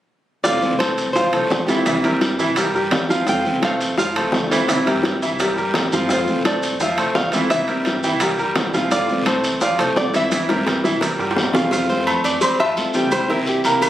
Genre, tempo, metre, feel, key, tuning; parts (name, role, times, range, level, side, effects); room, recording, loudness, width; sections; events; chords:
latin, Cuban son and guajira; 170 BPM; 4/4; straight; F major; A4 = 438 Hz
nylon-string guitar; melody; 0.4-13.8 s; G4 to G5; -23 LUFS; equal
nylon-string guitar; accompaniment; 0.4-13.9 s; C3 to F4; -23 LUFS; left 1 dB
upright bass; bass; 0.4-13.8 s; F1 to A2; -31 LUFS; equal
bongos and cowbell; percussion; 0.4-13.9 s; -25 LUFS; left 3 dB
guiro; percussion; 0.4-13.9 s; -30 LUFS; left 1 dB
maracas; percussion; 0.4-13.9 s; -32 LUFS; right 2 dB
bright grand piano; arpeggios; 0.5-13.9 s; E3 to E6; -21 LUFS; right 1 dB
timbales and agogo bells; percussion; 0.5-13.9 s; -26 LUFS; right 2 dB
moderate studio reverb, RT60 0.5 s; recorded on a phone in the room, studio reverb; -16 LUFS; side -12 dB against mid
0.4-11.7 A section; 11.7-13.9 B section
drum fill 10.3-11.7
0.4 Fmaj7; 1.9 C7; 3.3 Fmaj7; 4.7 C7; 6.1 Fmaj7; 7.5 C7; 8.9 Fmaj7; 10.3 C7; 11.7 Fmaj7; 13.1 C7